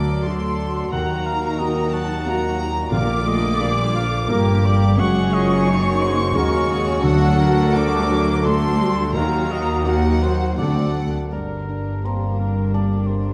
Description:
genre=cinematic, emotional film score for orchestra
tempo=81-91 BPM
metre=3/4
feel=rubato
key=unclear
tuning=A4 = 440 Hz
part: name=warm symphonic violin section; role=melody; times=0.0-13.3 s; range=Bb4 to D6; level=-33 LUFS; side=equal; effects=none
part: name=mellow cor anglais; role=second line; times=0.0-13.3 s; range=Ab4 to Gb5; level=-32 LUFS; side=equal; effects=none
part: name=warm symphonic violin section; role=second line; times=0.0-13.3 s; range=D4 to D5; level=-32 LUFS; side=equal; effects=none
part: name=dark symphonic viola section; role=accompaniment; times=0.0-13.3 s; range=D3 to F5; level=-28 LUFS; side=equal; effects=none
part: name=felt-muted upright piano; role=accompaniment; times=0.0-13.3 s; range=Gb1 to Bb5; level=-28 LUFS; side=equal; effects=none
part: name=mellow French horn section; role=sustained chords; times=0.0-13.3 s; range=Bb2 to F#4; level=-30 LUFS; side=equal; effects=none
part: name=rich symphonic double bass section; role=bass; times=0.0-13.3 s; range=Gb1 to Eb2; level=-27 LUFS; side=equal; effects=none
part: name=warm studio cello section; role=bass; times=0.0-13.3 s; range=D2 to Bb2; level=-26 LUFS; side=equal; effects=none
part: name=large flute ensemble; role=second line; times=0.3-11.3 s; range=F#5 to D6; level=-30 LUFS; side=equal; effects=none
part: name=timpani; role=percussion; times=2.9-3.9 s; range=Bb2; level=-30 LUFS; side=equal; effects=none
room=wet scoring stage reverb, RT60 1.8 s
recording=dark, warm production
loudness=-19 LUFS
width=mono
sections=0.0-11.3 A section; 11.3-13.3 B section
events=none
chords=0.0 D; 0.9 Ebm; 2.9 Bb; 5.0 Gbsus2; 7.0 D; 9.2 Ebm; 10.6 D7; 11.3 Gm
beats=0.26 | 0.93 1.60 2.27 | 2.93 3.62 4.30 | 4.98 5.67 6.35 | 7.04 7.76 8.46 | 9.16 9.86 10.59 | 11.32 12.04 12.73

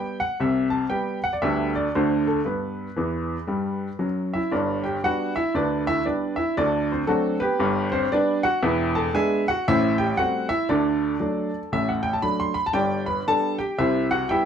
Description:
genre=jazz, stride piano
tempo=116 BPM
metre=4/4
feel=swing 62% on 8ths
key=G major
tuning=A4 = 441 Hz
part: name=clear upright piano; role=solo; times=0.0-14.5 s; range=E1 to C6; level=-21 LUFS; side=equal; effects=none
room=moderate studio ambience, RT60 0.5 s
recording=heard from further back in the room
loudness=-21 LUFS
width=side -8 dB against mid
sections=0.0-4.5 A section; 4.5-14.5 A section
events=upright piano fill 3.0-4.5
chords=0.4 C5; 1.4 G/D; 1.9 D7; 2.5 G; 6.6 D7; 7.6 G; 8.6 E7; 9.7 Am7; 10.7 D; 12.8 G; 13.8 Cmaj7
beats=| 0.39 0.91 1.42 1.94 | 2.45 2.97 3.48 4.00 | 4.51 5.03 5.55 6.06 | 6.58 7.09 7.61 8.12 | 8.64 9.15 9.67 10.19 | 10.70 11.22 11.73 12.25 | 12.76 13.28 13.79 14.31

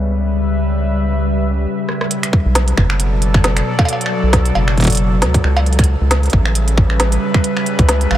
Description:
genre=IDM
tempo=135 BPM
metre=4/4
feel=swing 56% on 16ths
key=B minor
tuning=A4 = 440 Hz
part: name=warbly tape-like pad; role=sustained chords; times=0.0-8.2 s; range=B2 to E5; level=-19 LUFS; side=left 1 dB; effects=chorus, built-in reverb
part: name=round analog bass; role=bass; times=0.0-8.2 s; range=F#1 to D2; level=-15 LUFS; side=equal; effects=tube saturation
part: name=organic electronic drum kit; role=drums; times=1.9-8.2 s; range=cowbell, finger snaps, hi-hat, rim click, snare drum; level=-19 LUFS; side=right 1 dB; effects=none
part: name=electronic kick drum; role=drums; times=2.3-7.9 s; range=none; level=-13 LUFS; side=equal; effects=none
room=light reverb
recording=low-pass filter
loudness=-13 LUFS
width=side -12 dB against mid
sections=0.0-2.1 A section; 2.1-8.2 B section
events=filter sweep 0.0-2.1; break 1.7-2.1; drum fill 1.9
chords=0.0 A9/C# (rootless); 2.1 Bm7; 5.7 A9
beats=| 0.33 0.78 1.22 1.66 | 2.11 2.55 3.00 3.44 | 3.89 4.33 4.78 5.22 | 5.66 6.11 6.55 7.00 | 7.44 7.89

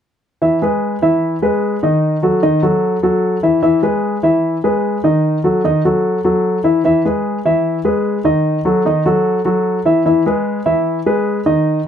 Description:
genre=jazz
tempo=150 BPM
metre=4/4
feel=straight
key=E major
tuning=A4 = 438 Hz
part: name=warm grand piano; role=solo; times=0.4-11.8 s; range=D#3 to E5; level=-13 LUFS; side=equal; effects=none
room=light reverb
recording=close, detailed microphones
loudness=-13 LUFS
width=side -8 dB against mid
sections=0.4-11.9 A section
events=none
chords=0.4 E; 2.0 D#dim; 3.6 E; 5.2 D#dim; 6.8 E; 8.4 D#dim; 10.1 E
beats=| 0.42 0.82 1.23 1.63 | 2.03 2.43 2.83 3.23 | 3.63 4.04 4.44 4.84 | 5.24 5.64 6.04 6.44 | 6.84 7.25 7.65 8.05 | 8.45 8.85 9.25 9.65 | 10.05 10.45 10.85 11.26 | 11.66

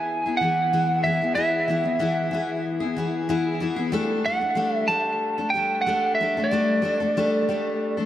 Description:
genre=rock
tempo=93 BPM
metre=4/4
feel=straight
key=unclear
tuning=A4 = 440 Hz
part: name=lightly driven lead guitar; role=melody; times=0.0-8.1 s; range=D5 to A5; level=-23 LUFS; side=right 2 dB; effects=dub echo
part: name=picked steel-string acoustic guitar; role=accompaniment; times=0.0-8.1 s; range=E3 to A4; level=-24 LUFS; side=left 2 dB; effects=dub echo
room=light reverb, small room ambience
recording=echo-heavy mix, lossy compression artefacts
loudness=-21 LUFS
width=side -12 dB against mid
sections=0.0-8.1 A section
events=none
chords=0.0 E; 3.9 Gsus2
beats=0.08 0.72 | 1.37 2.01 2.66 3.30 | 3.94 4.59 5.23 5.87 | 6.52 7.16 7.80

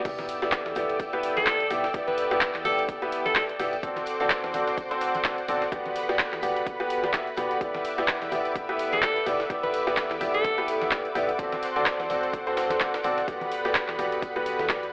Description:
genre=piano house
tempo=127 BPM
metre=4/4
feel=swing 57% on 16ths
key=E minor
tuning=A4 = 439 Hz
part: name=analog string pad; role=sustained chords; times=0.1-14.9 s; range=B4 to E6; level=-33 LUFS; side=equal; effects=ensemble chorus, vintage 12-bit sampler grit, sidechain pumping
part: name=bright upright piano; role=riff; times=0.1-14.8 s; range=B3 to E5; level=-27 LUFS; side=equal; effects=sidechain pumping, tape echo
part: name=solid FM bass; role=bass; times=0.1-14.9 s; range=D1 to E2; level=-46 LUFS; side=equal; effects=sidechain pumping
part: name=breakbeat sampler-style drum kit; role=drums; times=0.1-14.8 s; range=hi-hat, snare drum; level=-37 LUFS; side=equal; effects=none
part: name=electronic kick drum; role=drums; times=0.1-14.8 s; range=none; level=-34 LUFS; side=equal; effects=overdrive, studio reverb
part: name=punchy analog drum machine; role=drums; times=0.1-14.9 s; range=crash cymbal, handclaps, hi-hat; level=-28 LUFS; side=equal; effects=overdrive, studio reverb
part: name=tambourine and congas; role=percussion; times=0.1-14.9 s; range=none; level=-47 LUFS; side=equal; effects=none
part: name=sub drop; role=sound effects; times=0.1-1.9 s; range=none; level=-54 LUFS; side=equal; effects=none
part: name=warbly tape-like pad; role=texture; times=0.7-14.9 s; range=A4 to G5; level=-34 LUFS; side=equal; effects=none
part: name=clear alto saxophone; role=melody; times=1.4-3.4, 8.9-10.7 s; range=A4 to B4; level=-27 LUFS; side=equal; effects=tape echo
room=moderate digital room reverb, RT60 1.0 s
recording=telephone sound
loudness=-24 LUFS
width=side -27 dB against mid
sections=0.1-14.9 A section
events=drop 0.1-14.9; impact 0.1-1.9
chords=0.1 Em7; 3.8 D7/E; 5.7 Gmaj7/E; 11.4 D7/E; 13.3 Gmaj7/E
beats=| 0.05 0.52 1.00 1.47 | 1.94 2.41 2.89 3.36 | 3.83 4.30 4.78 5.25 | 5.72 6.19 6.67 7.14 | 7.61 8.08 8.55 9.03 | 9.50 9.97 10.45 10.92 | 11.39 11.86 12.34 12.81 | 13.28 13.75 14.22 14.70

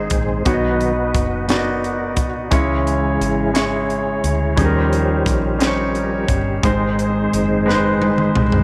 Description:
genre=slow gospel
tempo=58 BPM (dotted quarters)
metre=6/8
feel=straight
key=C# harmonic minor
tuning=A4 = 438 Hz
part: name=clear grand piano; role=accompaniment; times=0.0-8.6 s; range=G#2 to D#5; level=-21 LUFS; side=equal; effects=none
part: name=tonewheel organ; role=sustained chords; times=0.0-8.6 s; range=D#3 to C#5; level=-25 LUFS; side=equal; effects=slow rotary speaker, chorus vibrato
part: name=deep dub fingered electric bass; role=bass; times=0.0-8.6 s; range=F#1 to D#2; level=-26 LUFS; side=equal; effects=none
part: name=crisp fusion drum kit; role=drums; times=0.1-8.6 s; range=hi-hat, kick drum, snare drum, toms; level=-24 LUFS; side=equal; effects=none
room=moderate plate reverb, RT60 3.2 s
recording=none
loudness=-18 LUFS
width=mono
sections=0.0-8.6 A section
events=tonewheel organ solo 0.0-8.6; drum fill 7.7-8.6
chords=0.5 B; 2.5 C#m; 4.6 D#7; 6.6 G#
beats=| 0.46 1.49 | 2.52 3.55 | 4.58 5.61 | 6.63 7.66

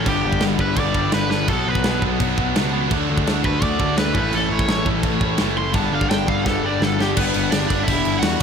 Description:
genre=punk rock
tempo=169 BPM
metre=4/4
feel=straight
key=unclear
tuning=A4 = 440 Hz
part: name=cranked stack guitar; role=melody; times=0.0-8.4 s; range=B3 to C6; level=-25 LUFS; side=equal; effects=overdrive, digital delay
part: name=cranked stack guitar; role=riff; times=0.0-8.4 s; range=G2 to D4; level=-25 LUFS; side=left 16 dB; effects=overdrive
part: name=distorted electric guitar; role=riff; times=0.0-8.4 s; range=G2 to E4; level=-26 LUFS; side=right 16 dB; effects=overdrive
part: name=fuzz picked electric bass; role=bass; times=0.0-8.4 s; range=E1 to E2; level=-24 LUFS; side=right 1 dB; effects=overdrive
part: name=distorted electric guitar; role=riff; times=0.1-7.2 s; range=G2 to D4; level=-27 LUFS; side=equal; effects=distortion
part: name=tight metal drum kit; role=drums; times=0.1-8.4 s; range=crash cymbal, kick drum, snare drum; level=-22 LUFS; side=right 1 dB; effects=none
room=little or no reverb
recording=none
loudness=-17 LUFS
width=side -6 dB against mid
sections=0.0-7.2 A section; 7.2-8.4 B section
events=overdriven electric guitar solo 0.0-7.2; drum fill 1.3, 6.5-7.2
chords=0.1 G; 1.5 Bm; 2.9 D; 4.2 A; 5.8 G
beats=| 0.06 0.42 0.77 1.13 | 1.49 1.84 2.20 2.55 | 2.91 3.26 3.62 3.97 | 4.33 4.68 5.04 5.40 | 5.75 6.11 6.46 6.82 | 7.17 7.53 7.88 8.24

